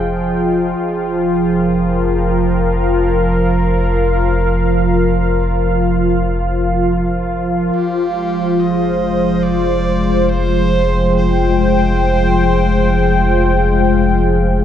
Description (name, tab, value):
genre	ambient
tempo	free time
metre	none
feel	none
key	F minor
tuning	A4 = 440 Hz
part	warm analog pad	sustained chords	0.0-14.6 s	F3 to G5	-14 LUFS	equal	chorus
part	warm sub bass	bass	0.0-14.6 s	F1	-18 LUFS	equal	none
part	bright electric violin	melody	7.8-14.2 s	G4 to Eb5	-29 LUFS	equal	analog delay
room	wet spring reverb, RT60 2.8 s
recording	echo-heavy mix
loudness	-13 LUFS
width	side -10 dB against mid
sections	0.0-7.8 A section; 7.8-14.6 B section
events	fade-in on electric violin 7.8-14.6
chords	0.0 Fm7; 0.8 Bb5/F; 7.8 Fmadd9